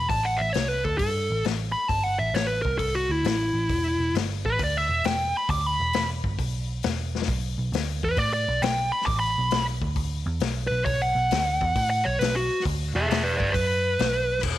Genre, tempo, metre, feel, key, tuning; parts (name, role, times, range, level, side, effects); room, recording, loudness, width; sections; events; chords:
blues rock power trio and southern rock; 134 BPM; 4/4; swing 68% on 8ths; A4 = 440 Hz
dark smooth lead guitar; melody; 0.0-14.4 s; E4 to D6; -25 LUFS; equal; overdrive, slapback echo
vintage muted picked electric bass; bass; 0.0-14.6 s; E1 to A2; -28 LUFS; right 1 dB
vintage drum kit; drums; 0.1-14.6 s; crash cymbal, hi-hat, kick drum, snare drum; -30 LUFS; left 4 dB
light reverb, small room ambience; 1960s-style stereo; -22 LUFS; side -14 dB against mid
0.0-14.4 A section
lead electric guitar solo 0.0-14.6; drum fill 7.1
0.1 A5; 3.7 E5; 7.3 B5; 12.7 E7; 13.5 B5